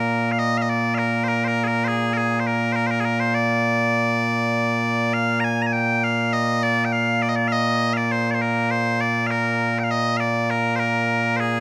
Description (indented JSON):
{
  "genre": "scottish traditional, Scottish pipe music",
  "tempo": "101 BPM",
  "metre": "4/4",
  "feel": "straight",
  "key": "Bb mixolydian",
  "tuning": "A4 = 440 Hz",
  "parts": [
    { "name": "loud bright bagpipes", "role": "solo", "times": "0.0-11.6 s", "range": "Bb2 to Bb5", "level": "-21 LUFS", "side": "equal", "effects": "none" }
  ],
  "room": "light reverb, studio ambience",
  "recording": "rough home demo mix",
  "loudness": "-21 LUFS",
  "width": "mono",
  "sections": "0.4-11.6 A section",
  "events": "none",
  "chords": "none"
}